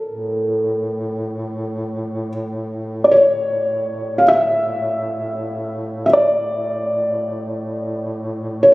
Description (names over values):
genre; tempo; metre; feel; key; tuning
caucasian folk, Caucasian lament; free time; none; none; A major; A4 = 440 Hz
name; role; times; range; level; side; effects
felt-muted upright piano; melody; 0.0-8.7 s; A4 to F5; -16 LUFS; equal; none
mellow duduk; drone; 0.1-8.7 s; A2; -26 LUFS; equal; none
room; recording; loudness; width
moderate cathedral reverb, RT60 5.3 s; recorded on a phone in the room, studio reverb; -17 LUFS; side -20 dB against mid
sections
0.0-8.7 A section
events
none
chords
none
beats
free time